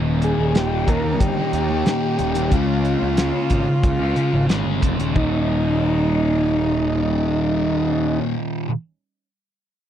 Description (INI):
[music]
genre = psychedelic rock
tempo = 91 BPM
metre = 4/4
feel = straight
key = Eb mixolydian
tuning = A4 = 440 Hz
[part]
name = bright chamber string section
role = sustained chords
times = 0.0-8.2 s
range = G3 to F4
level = -32 LUFS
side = right 4 dB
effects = none
[part]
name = thick fuzz guitar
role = riff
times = 0.0-8.7 s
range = Eb2 to Db4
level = -22 LUFS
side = equal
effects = distortion, phaser
[part]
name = fuzz picked electric bass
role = bass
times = 0.0-8.2 s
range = Eb1 to Eb2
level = -23 LUFS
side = equal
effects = overdrive
[part]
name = combo organ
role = melody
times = 0.2-8.2 s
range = Eb4 to Bb4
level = -22 LUFS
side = equal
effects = slapback echo
[part]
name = cloth-damped thuddy drum kit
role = drums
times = 0.2-5.3 s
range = hi-hat, kick drum, snare drum, toms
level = -20 LUFS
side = equal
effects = none
[sound]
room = little or no reverb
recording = dry, close 1970s-style studio recording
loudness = -18 LUFS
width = side -10 dB against mid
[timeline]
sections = 0.0-5.2 A section; 5.2-7.8 B section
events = none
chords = 0.0 Eb7; 2.5 Db6; 5.2 Eb7